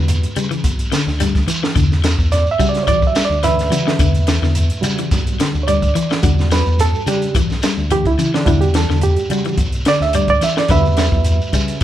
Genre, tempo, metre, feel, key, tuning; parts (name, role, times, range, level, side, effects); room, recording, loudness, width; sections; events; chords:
afrobeat; 108 BPM; 4/4; swing 54% on 16ths; E dorian; A4 = 440 Hz
barky reed electric piano; accompaniment; 0.0-11.8 s; G3 to E5; -19 LUFS; right 4 dB; overdrive, fast tremolo
electric guitar at the edge of break-up; arpeggios; 0.0-11.7 s; C#3 to G3; -22 LUFS; left 6 dB
fingered electric bass; bass; 0.0-11.8 s; B1 to E3; -18 LUFS; equal
compact cocktail drum kit; drums; 0.1-11.8 s; hi-hat, kick drum, snare drum; -20 LUFS; equal
shekere; percussion; 0.1-11.8 s; -23 LUFS; equal
light reverb; band playing live in one room; -14 LUFS; side -12 dB against mid
0.0-11.8 A section
reed electric piano solo 0.0-11.8
0.0 Em9